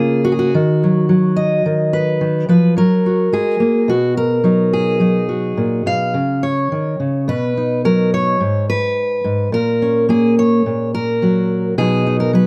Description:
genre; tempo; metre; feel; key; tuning
folk, solo fingerstyle acoustic guitar; 107 BPM; 4/4; straight; unclear; A4 = 439 Hz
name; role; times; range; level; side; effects
fingerpicked steel-string acoustic guitar; solo; 0.0-12.5 s; Ab2 to F5; -16 LUFS; equal; none
room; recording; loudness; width
light reverb; none; -16 LUFS; mono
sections
0.0-12.5 A section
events
none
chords
0.0 Bbm/Db; 0.5 Ebm; 1.7 Cb/Eb; 2.8 Gb; 3.9 Cb; 6.2 Dbadd9; 7.3 Cb; 8.4 N.C.; 9.5 Bbm; 10.6 Gb/Bb; 11.8 Cb

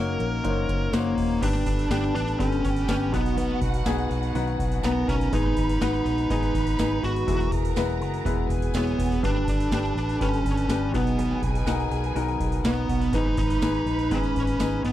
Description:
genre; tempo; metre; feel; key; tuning
piano-driven pop; 123 BPM; 4/4; straight; B major; A4 = 440 Hz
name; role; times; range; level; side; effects
fuzz lead guitar; melody; 0.0-14.9 s; A#3 to A#4; -27 LUFS; right 1 dB; distortion
bright upright piano; accompaniment; 0.0-14.9 s; G2 to C#5; -30 LUFS; left 6 dB; none
direct-recorded clean electric guitar; riff; 0.0-14.9 s; G#2 to B4; -34 LUFS; right 8 dB; spring reverb
vintage muted fingered electric bass; bass; 0.0-14.9 s; E1 to B1; -28 LUFS; equal; none
booming analog drum machine; drums; 0.2-14.9 s; crash cymbal, hi-hat, kick drum, snare drum; -29 LUFS; equal; overdrive
tambourine; percussion; 0.9-14.7 s; none; -44 LUFS; right 18 dB; none
warm studio violin section; second line; 1.4-14.9 s; F#4 to B5; -35 LUFS; right 1 dB; none
room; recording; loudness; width
little or no reverb; dry, close 1970s-style studio recording; -22 LUFS; side -13 dB against mid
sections
0.0-1.4 A section; 1.4-14.9 B section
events
none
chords
0.0 F#6; 1.4 G; 3.1 B; 5.3 G#m; 7.3 Eadd9; 9.2 G; 10.9 B; 13.1 G#m

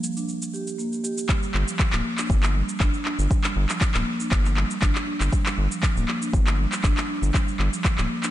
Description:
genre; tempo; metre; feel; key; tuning
afro house; 119 BPM; 4/4; straight; G minor; A4 = 439 Hz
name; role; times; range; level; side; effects
electronic cabasa and handclaps; drums; 0.0-8.3 s; none; -28 LUFS; equal; overdrive
marimba with soft mallets; arpeggios; 0.2-8.3 s; F3 to G4; -28 LUFS; right 1 dB; sidechain pumping, tape echo
electronic kick drum; drums; 1.3-8.0 s; none; -22 LUFS; equal; overdrive
round analog bass; bass; 1.5-8.1 s; D1 to G1; -24 LUFS; equal; sidechain pumping
room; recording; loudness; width
digital ambience; nothing above 10.3 kHz; -21 LUFS; side -13 dB against mid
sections
0.0-1.3 A section; 1.3-8.3 B section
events
drop 1.3-8.3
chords
0.0 Gm; 1.3 G5

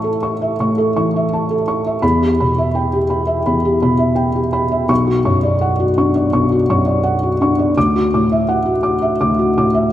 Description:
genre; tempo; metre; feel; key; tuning
neoclassical minimalist piano; 84 BPM; 4/4; rubato; D major; A4 = 442 Hz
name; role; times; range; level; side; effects
felt-muted upright piano; solo; 0.0-9.9 s; B1 to D6; -14 LUFS; equal; none
room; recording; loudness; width
moderate lush hall reverb, RT60 2.7 s; rough home demo mix; -14 LUFS; side -12 dB against mid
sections
0.0-9.9 A section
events
none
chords
0.0 A; 2.0 Em; 4.9 Bmadd9; 7.8 Dadd9

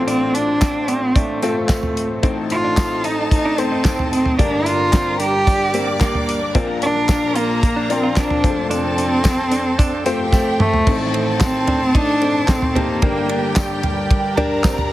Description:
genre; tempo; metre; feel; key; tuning
piano-driven pop; 111 BPM; 4/4; straight; unclear; A4 = 441 Hz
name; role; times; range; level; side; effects
warm cello; melody; 0.0-13.8 s; A3 to G4; -20 LUFS; equal; none
bright upright piano; accompaniment; 0.0-14.9 s; F1 to D5; -24 LUFS; left 3 dB; none
sweeping resonant pad; sustained chords; 0.0-14.9 s; F2 to F5; -28 LUFS; right 1 dB; chorus
direct-recorded clean electric guitar; riff; 0.1-14.8 s; A3 to F4; -25 LUFS; right 3 dB; none
damped 70s drum kit; drums; 0.1-14.9 s; crash cymbal, handclaps, hi-hat, kick drum, ride cymbal, snare drum, toms; -18 LUFS; equal; none
tambourine; percussion; 0.6-14.8 s; none; -33 LUFS; left 6 dB; none
warm symphonic violin section; second line; 2.2-14.9 s; G4 to D6; -26 LUFS; right 1 dB; none
room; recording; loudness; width
light reverb, small room ambience; heavily compressed radio sound; -15 LUFS; side -15 dB against mid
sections
0.0-10.9 A section; 10.9-14.9 B section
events
drum fill 10.3-10.9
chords
0.0 F/A; 2.2 Adim; 4.4 Gm; 6.6 Bb; 8.4 F; 10.9 Adim; 13.0 Gm

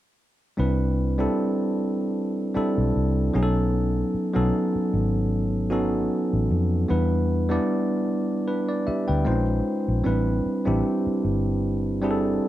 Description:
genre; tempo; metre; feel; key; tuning
R&B, neo-soul; 76 BPM; 4/4; swing 55% on 16ths; C major; A4 = 439 Hz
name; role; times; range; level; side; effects
bell-like tine electric piano; accompaniment; 0.6-12.5 s; F#3 to G5; -23 LUFS; equal; none
vintage muted fingered electric bass; bass; 0.6-12.4 s; G1 to F2; -24 LUFS; equal; none
room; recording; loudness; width
digital ambience; dry, close 1970s-style studio recording; -21 LUFS; side -14 dB against mid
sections
0.6-12.5 A section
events
none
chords
0.6 Cmaj9; 3.3 B7; 6.9 Em7; 9.3 Bbm11; 10.0 Am11

